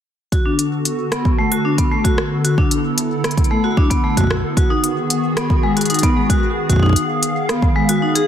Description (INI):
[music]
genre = IDM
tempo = 113 BPM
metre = 4/4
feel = straight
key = unclear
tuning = A4 = 439 Hz
[part]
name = hollow soft pad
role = sustained chords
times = 0.4-8.3 s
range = D3 to E#5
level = -21 LUFS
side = equal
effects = ensemble chorus
[part]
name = vibraphone with medium hard mallets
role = arpeggios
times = 0.3-8.2 s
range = G#3 to G#4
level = -19 LUFS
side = left 2 dB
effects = low-pass filter, digital delay
[part]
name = electronic kick drum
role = drums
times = 0.3-7.7 s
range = none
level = -16 LUFS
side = equal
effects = overdrive
[part]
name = organic electronic drum kit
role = drums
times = 0.3-8.3 s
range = hi-hat, rim click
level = -22 LUFS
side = equal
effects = overdrive
[sound]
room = light reverb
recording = dense, heavily limited modern master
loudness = -15 LUFS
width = side -9 dB against mid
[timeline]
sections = 0.3-8.3 A section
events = kick drops out 7.8-8.3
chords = 0.3 Bm7; 4.6 G#m7